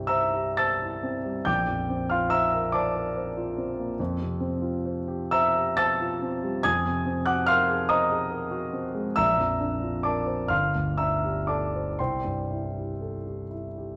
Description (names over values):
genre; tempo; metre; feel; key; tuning
classical, impressionist solo piano; 39-49 BPM (dotted quarters); 6/8; rubato; C mixolydian; A4 = 440 Hz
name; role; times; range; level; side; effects
warm concert grand piano; solo; 0.0-14.0 s; G1 to A6; -26 LUFS; equal; none
room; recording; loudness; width
moderate scoring stage reverb, RT60 1.8 s; none; -27 LUFS; mono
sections
0.0-14.0 A section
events
none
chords
0.0 C6; 1.5 Bbadd9; 4.0 Fadd9; 6.7 Ab9/F; 9.2 Bbadd9; 10.5 G9sus4; 12.0 C6